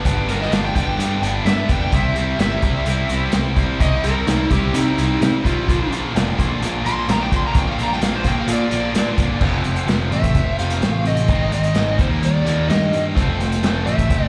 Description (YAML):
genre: classic rock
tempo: 128 BPM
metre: 4/4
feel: straight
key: C mixolydian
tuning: A4 = 440 Hz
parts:
  - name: cranked stack guitar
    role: riff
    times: 0.0-14.3 s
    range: F2 to F4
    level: -27 LUFS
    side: equal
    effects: overdrive, slapback echo
  - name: tight distorted guitar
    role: riff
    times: 0.0-14.3 s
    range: G2 to F4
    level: -28 LUFS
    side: equal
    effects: distortion, slapback echo
  - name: growling picked electric bass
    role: bass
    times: 0.1-14.3 s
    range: F1 to C3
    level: -24 LUFS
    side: equal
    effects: overdrive
  - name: vintage drum kit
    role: drums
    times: 0.1-14.2 s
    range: crash cymbal, hi-hat, kick drum, snare drum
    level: -24 LUFS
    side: equal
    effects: none
  - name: overdriven slide guitar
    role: melody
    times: 0.3-14.3 s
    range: Eb4 to C6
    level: -26 LUFS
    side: equal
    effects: slapback echo, tape echo
room: light reverb, studio ambience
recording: live gig heard through the venue's PA, club reverb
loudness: -19 LUFS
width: mono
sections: 0.0-9.4 A section; 9.4-14.3 B section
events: electric slide guitar solo 0.0-9.4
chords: 0.0 G; 1.9 C; 5.7 Bb; 9.4 F; 11.3 Ab; 12.0 Eb; 13.2 F